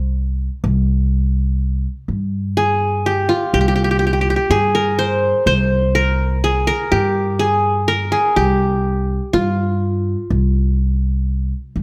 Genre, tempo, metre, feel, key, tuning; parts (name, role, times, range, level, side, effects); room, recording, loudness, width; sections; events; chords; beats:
Arabic maqam ensemble; 124 BPM (eighths); 10/8; straight; A4 = 440 Hz
qanun; melody; 0.0-10.7 s; F4 to C5; -19 LUFS; equal
upright bass; bass; 0.0-11.8 s; C2 to G2; -20 LUFS; equal
moderate recital hall reverb, RT60 1.5 s; -18 LUFS; mono
0.6-11.8 A section
0.15 | 0.64 1.12 1.61 2.09 2.57 3.06 3.54 4.03 4.51 4.99 | 5.48 5.96 6.44 6.93 7.41 7.89 8.38 8.86 9.34 9.83 | 10.31 10.79 11.28 11.76